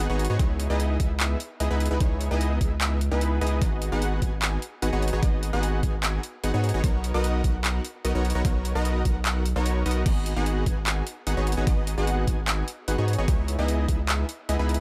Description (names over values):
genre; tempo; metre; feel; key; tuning
future bass; 149 BPM; 4/4; half-time; G# minor; A4 = 440 Hz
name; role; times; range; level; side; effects
supersaw stab; riff; 0.0-14.8 s; B3 to G#5; -31 LUFS; equal; sidechain pumping, tape echo
saturated sub bass; bass; 0.0-14.8 s; G#1 to G#2; -28 LUFS; equal; sidechain pumping
dubstep drum kit; drums; 0.2-14.8 s; crash cymbal, handclaps, hi-hat, ride cymbal; -33 LUFS; equal; overdrive
electronic kick drum; drums; 0.4-14.0 s; none; -26 LUFS; equal; overdrive
room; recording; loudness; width
little or no reverb; none; -25 LUFS; mono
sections
0.0-14.8 A section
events
none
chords
0.4 C#m9; 3.6 G#m7; 6.8 Bmaj9; 10.1 G#m7; 13.3 C#m9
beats
| 0.40 0.80 1.20 1.60 | 2.00 2.41 2.81 3.21 | 3.62 4.02 4.42 4.82 | 5.23 5.63 6.03 6.43 | 6.84 7.24 7.64 8.05 | 8.45 8.85 9.25 9.66 | 10.06 10.46 10.86 11.27 | 11.67 12.07 12.47 12.88 | 13.28 13.68 14.09 14.49